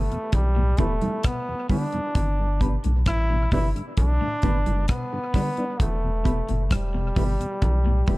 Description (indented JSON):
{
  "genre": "roots reggae",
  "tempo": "66 BPM",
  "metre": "4/4",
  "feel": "straight",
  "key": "unclear",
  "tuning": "A4 = 440 Hz",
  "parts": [
    { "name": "brilliant trombone", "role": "melody", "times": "0.0-8.2 s", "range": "G3 to E4", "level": "-29 LUFS", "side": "equal", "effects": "dub echo" },
    { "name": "electric guitar at the edge of break-up", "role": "arpeggios", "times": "0.0-8.2 s", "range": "G2 to D3", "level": "-33 LUFS", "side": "left 3 dB", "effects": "none" },
    { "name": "soft dub sub bass", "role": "bass", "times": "0.0-8.2 s", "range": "E1 to B1", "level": "-23 LUFS", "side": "equal", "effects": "none" },
    { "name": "mellow tonewheel organ", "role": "accompaniment", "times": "0.1-8.2 s", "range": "E2 to E4", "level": "-35 LUFS", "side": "left 1 dB", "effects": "chorus vibrato, slow rotary speaker, dub echo" },
    { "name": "damped 70s drum kit", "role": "drums", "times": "0.1-8.2 s", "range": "hi-hat, kick drum, rim click", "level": "-24 LUFS", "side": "equal", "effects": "none" },
    { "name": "congas", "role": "percussion", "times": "0.3-8.2 s", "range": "none", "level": "-33 LUFS", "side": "right 2 dB", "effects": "none" },
    { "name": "mellow electric guitar", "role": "accompaniment", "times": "0.8-8.2 s", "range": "B3 to B4", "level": "-34 LUFS", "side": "right 4 dB", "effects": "wide subtle chorus, dub echo" }
  ],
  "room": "small room ambience",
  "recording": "dark, warm production",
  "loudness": "-21 LUFS",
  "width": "side -20 dB against mid",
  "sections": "0.0-8.2 A section",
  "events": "none",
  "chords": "0.0 Em; 2.2 G; 5.8 Em"
}